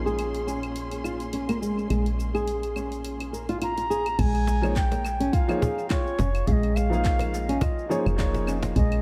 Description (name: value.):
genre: organic downtempo.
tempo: 105 BPM.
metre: 4/4.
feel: swing 56% on 16ths.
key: Bb minor.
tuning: A4 = 440 Hz.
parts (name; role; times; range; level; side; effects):
felt-muted upright piano; accompaniment; 0.0-9.0 s; F3 to F5; -33 LUFS; equal; sidechain pumping, analog delay.
warm symphonic string section; sustained chords; 0.0-4.2 s; Bb2 to C6; -40 LUFS; equal; sidechain pumping, low-pass filter.
woody FM bass; bass; 0.0-9.0 s; F1 to Bb1; -30 LUFS; equal; sidechain pumping.
flamenco guitar; arpeggios; 0.1-9.0 s; Ab3 to Bb4; -31 LUFS; equal; analog delay.
afro-pop drum kit; drums; 0.1-9.0 s; claves, crash cymbal, handclaps, hi-hat, shaker; -41 LUFS; equal; small room ambience, analog delay.
bright reedy bansuri; melody; 3.6-9.0 s; C5 to Bb5; -34 LUFS; equal; vintage 12-bit sampler grit, tape echo.
electronic kick drum; drums; 4.2-8.9 s; none; -28 LUFS; equal; small room ambience.
cajon; percussion; 4.5-8.7 s; none; -32 LUFS; equal; none.
room: light reverb, studio reverb.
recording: echo-heavy mix.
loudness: -26 LUFS.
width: mono.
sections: 0.0-4.2 A section; 4.2-9.0 B section.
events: filter sweep on string section 0.0-4.2.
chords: 0.0 Bbm7.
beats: 0.19 0.76 1.33 | 1.90 2.47 3.05 3.62 | 4.19 4.76 5.33 5.90 | 6.47 7.05 7.62 8.19 | 8.76.